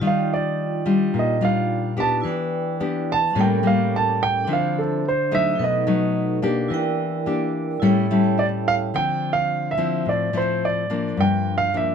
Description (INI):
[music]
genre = bossa nova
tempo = 108 BPM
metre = 4/4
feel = straight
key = D minor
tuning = A4 = 440 Hz
[part]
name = nylon-string guitar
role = accompaniment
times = 0.0-11.9 s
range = G2 to G4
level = -22 LUFS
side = left 4 dB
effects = none
[part]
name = vibraphone with medium hard mallets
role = accompaniment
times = 0.0-9.0 s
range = C#4 to A5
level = -27 LUFS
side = right 6 dB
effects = none
[part]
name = warm grand piano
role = melody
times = 0.1-11.9 s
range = A4 to A5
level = -22 LUFS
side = right 5 dB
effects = none
[sound]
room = light reverb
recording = close, detailed microphones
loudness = -19 LUFS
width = side -7 dB against mid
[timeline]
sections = 0.0-8.9 A section; 8.9-11.9 B section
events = grand piano solo 0.0-8.9; vibraphone fill 7.8-8.9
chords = 0.0 Ebmaj9; 2.2 Em7; 3.4 A7b9; 4.5 Dm9; 5.6 B7; 6.7 Em7b5; 7.8 A7; 8.9 Dm9; 11.2 Gm7